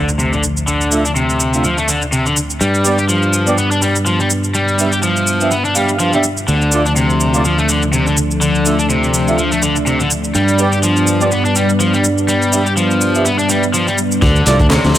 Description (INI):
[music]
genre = breakbeat, breaks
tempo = 124 BPM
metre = 4/4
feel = swing 56% on 16ths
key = D dorian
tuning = A4 = 440 Hz
[part]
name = dark analog pad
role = sustained chords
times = 0.0-15.0 s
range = F3 to E5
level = -20 LUFS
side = equal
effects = chorus, sidechain pumping
[part]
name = cranked stack guitar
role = riff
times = 0.0-15.0 s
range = C3 to G4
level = -16 LUFS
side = left 1 dB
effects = overdrive, low-pass filter, dub echo
[part]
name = fingered electric bass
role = bass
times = 0.0-14.9 s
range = C2 to G2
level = -18 LUFS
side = equal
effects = low-pass filter
[part]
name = impact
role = sound effects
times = 0.0-0.7 s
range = none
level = -32 LUFS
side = equal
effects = none
[part]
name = electronic shaker and handclaps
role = drums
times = 0.1-15.0 s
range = none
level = -20 LUFS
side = right 1 dB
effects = none
[part]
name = dark brass ensemble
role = stabs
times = 0.9-14.6 s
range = A3 to F5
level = -21 LUFS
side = right 2 dB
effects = low-pass filter, dub echo
[part]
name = crunchy breakbeat drum kit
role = drums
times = 14.2-15.0 s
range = hi-hat, kick drum, snare drum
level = -15 LUFS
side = equal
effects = none
[sound]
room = light reverb, studio ambience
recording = none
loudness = -12 LUFS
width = side -12 dB against mid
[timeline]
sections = 0.0-14.2 A section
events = impact 0.0-0.7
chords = 0.0 Dm; 2.6 G; 6.5 Dm; 10.3 G; 14.2 Dm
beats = 0.19 | 0.67 1.16 1.64 2.12 | 2.61 3.09 3.58 4.06 | 4.54 5.03 5.51 6.00 | 6.48 6.96 7.45 7.93 | 8.41 8.90 9.38 9.87 | 10.35 10.83 11.32 11.80 | 12.29 12.77 13.25 13.74 | 14.22 14.70